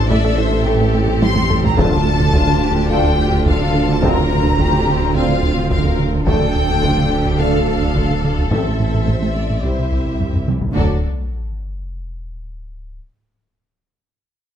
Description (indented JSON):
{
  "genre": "cinematic, hybrid orchestral and electronic film score",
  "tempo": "107 BPM",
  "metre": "4/4",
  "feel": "straight",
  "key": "D minor",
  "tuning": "A4 = 440 Hz",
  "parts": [
    { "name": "warm symphonic violin section", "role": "melody", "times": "0.0-11.1 s", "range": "C5 to C6", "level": "-23 LUFS", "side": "left 4 dB", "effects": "none" },
    { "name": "warm symphonic violin section", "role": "second line", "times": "0.0-11.1 s", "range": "F4 to E5", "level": "-27 LUFS", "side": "left 4 dB", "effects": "none" },
    { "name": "warm symphonic viola section", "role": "accompaniment", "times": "0.0-11.1 s", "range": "F#3 to A4", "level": "-25 LUFS", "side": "equal", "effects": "none" },
    { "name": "plucky analog bass", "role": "riff", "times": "0.0-10.7 s", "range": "C2 to A3", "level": "-21 LUFS", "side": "right 1 dB", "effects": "none" },
    { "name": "mellow tuba", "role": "bass", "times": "0.0-11.0 s", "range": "A1 to D2", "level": "-23 LUFS", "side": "right 5 dB", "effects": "none" },
    { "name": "saturated sub bass", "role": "bass", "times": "0.0-11.1 s", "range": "D1 to C2", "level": "-24 LUFS", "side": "left 1 dB", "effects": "none" },
    { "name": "warm studio double bass section", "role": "bass", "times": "0.0-11.1 s", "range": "A1 to D2", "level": "-24 LUFS", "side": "right 1 dB", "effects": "none" },
    { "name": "warm symphonic cello section", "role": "bass", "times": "0.0-11.1 s", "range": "D2 to D3", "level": "-24 LUFS", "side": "right 3 dB", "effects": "none" },
    { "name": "taiko ensemble", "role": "drums", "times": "0.1-11.8 s", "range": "none", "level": "-22 LUFS", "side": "left 1 dB", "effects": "none" },
    { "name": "warm French horn section", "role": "sustained chords", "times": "0.7-11.0 s", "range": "C4 to C5", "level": "-26 LUFS", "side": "left 5 dB", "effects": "none" },
    { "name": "warm trombone section", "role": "sustained chords", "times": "0.7-11.0 s", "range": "D3 to C4", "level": "-27 LUFS", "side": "right 6 dB", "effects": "none" },
    { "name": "sub drop", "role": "sound effects", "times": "10.8-13.0 s", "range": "none", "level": "-24 LUFS", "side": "left 1 dB", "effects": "none" }
  ],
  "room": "light reverb",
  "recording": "none",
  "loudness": "-14 LUFS",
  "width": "side -9 dB against mid",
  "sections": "0.0-10.8 A section; 10.8-13.0 B section",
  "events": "drum fill 1.2-1.8, 10.2-10.8; impact 10.8-13.0",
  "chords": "0.0 Am; 1.8 Dm; 4.0 Bbadd9/D; 6.3 Dm; 8.5 Am; 9.6 C; 10.8 D"
}